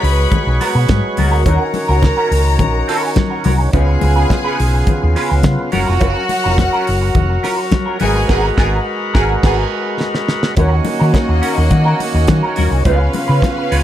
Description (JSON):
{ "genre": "disco", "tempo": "105 BPM", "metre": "4/4", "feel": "straight", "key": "unclear", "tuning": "A4 = 440 Hz", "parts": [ { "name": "clear studio string section", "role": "second line", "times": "0.0-13.8 s", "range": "A#3 to B5", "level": "-21 LUFS", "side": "equal", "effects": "none" }, { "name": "semi-hollow electric guitar", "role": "accompaniment", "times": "0.0-13.8 s", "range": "B3 to B4", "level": "-22 LUFS", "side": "right 2 dB", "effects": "wah, ensemble chorus" }, { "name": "overdriven tonewheel organ", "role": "sustained chords", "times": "0.0-13.8 s", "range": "C#3 to C#5", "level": "-20 LUFS", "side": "equal", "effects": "slow rotary speaker" }, { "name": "hollow-body short-scale fingered electric bass", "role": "bass", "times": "0.0-13.8 s", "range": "E#1 to D#3", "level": "-15 LUFS", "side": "equal", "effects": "none" }, { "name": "damped 70s drum kit", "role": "drums", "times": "0.0-13.8 s", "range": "crash cymbal, hi-hat, kick drum, snare drum", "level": "-18 LUFS", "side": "equal", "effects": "none" }, { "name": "congas", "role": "percussion", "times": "0.3-13.6 s", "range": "none", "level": "-22 LUFS", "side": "left 6 dB", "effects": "none" } ], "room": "studio ambience", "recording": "none", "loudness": "-12 LUFS", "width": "side -12 dB against mid", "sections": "0.0-10.6 A section; 10.6-13.8 B section", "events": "band accent 8.3-10.6; drum fill 10.0-10.6", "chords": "0.0 G#m9; 1.5 D#m7; 3.7 C#7; 5.7 F#maj7; 8.0 G#m9; 10.6 D#m7; 12.9 C#7" }